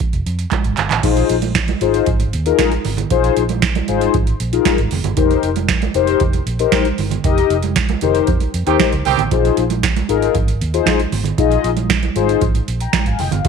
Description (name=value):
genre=early-eighties boogie funk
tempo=116 BPM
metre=4/4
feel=straight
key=unclear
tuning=A4 = 443 Hz
part: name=booming analog drum machine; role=drums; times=0.0-13.5 s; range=crash cymbal, handclaps, hi-hat, kick drum, snare drum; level=-18 LUFS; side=right 3 dB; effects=none
part: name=vintage muted fingered electric bass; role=bass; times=0.1-13.5 s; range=F1 to F2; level=-21 LUFS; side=right 1 dB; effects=none
part: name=congas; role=percussion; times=0.5-13.5 s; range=none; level=-25 LUFS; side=right 14 dB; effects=none
part: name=mellow synth brass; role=accompaniment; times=1.0-13.5 s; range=Eb4 to Bb5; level=-18 LUFS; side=left 13 dB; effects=chorus
part: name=clear horn section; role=second line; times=8.7-9.2 s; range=Eb3 to G4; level=-19 LUFS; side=right 15 dB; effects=none
room=light reverb, digital ambience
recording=1960s-style stereo with parts hard left and right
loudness=-14 LUFS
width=side -6 dB against mid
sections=0.0-1.0 A section; 1.0-13.5 B section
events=drum fill 0.5-1.0; band accent 7.2-9.3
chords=0.0 Fsus2; 1.0 Bb9sus4; 5.2 F9sus4; 9.3 Bb9sus4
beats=0.00 0.52 | 1.04 1.55 2.07 2.59 | 3.10 3.62 4.14 4.66 | 5.17 5.69 6.21 6.73 | 7.24 7.76 8.28 8.79 | 9.31 9.83 10.35 10.86 | 11.38 11.90 12.42 12.93 | 13.45